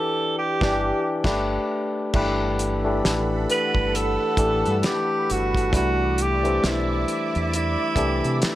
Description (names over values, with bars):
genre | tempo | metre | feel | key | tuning
R&B, neo-soul | 67 BPM | 4/4 | swing 59% on 16ths | G major | A4 = 440 Hz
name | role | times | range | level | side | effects
breathy tenor saxophone | melody | 0.0-8.6 s | E4 to B4 | -24 LUFS | right 1 dB | plate reverb
barky tine electric piano | accompaniment | 0.0-8.6 s | E3 to D5 | -25 LUFS | left 2 dB | plate reverb
deep dub fingered electric bass | bass | 0.6-8.5 s | G1 to C3 | -26 LUFS | right 1 dB | none
cloth-damped thuddy drum kit | drums | 0.6-8.6 s | crash cymbal, hi-hat, kick drum, snare drum | -26 LUFS | equal | none
lush unison pad | sustained chords | 2.6-8.6 s | A4 to D6 | -32 LUFS | right 2 dB | chorus, phaser, plate reverb
room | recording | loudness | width
moderate studio reverb, RT60 0.5 s | none | -20 LUFS | side -14 dB against mid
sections
0.0-2.1 A section; 2.1-8.6 B section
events
band accent 0.0-2.1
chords
0.0 G6; 1.2 Gadd9; 2.1 Gmaj9; 5.7 Cmaj9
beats
0.35 1.25 | 2.14 3.04 3.93 4.83 | 5.72 6.62 7.51 8.41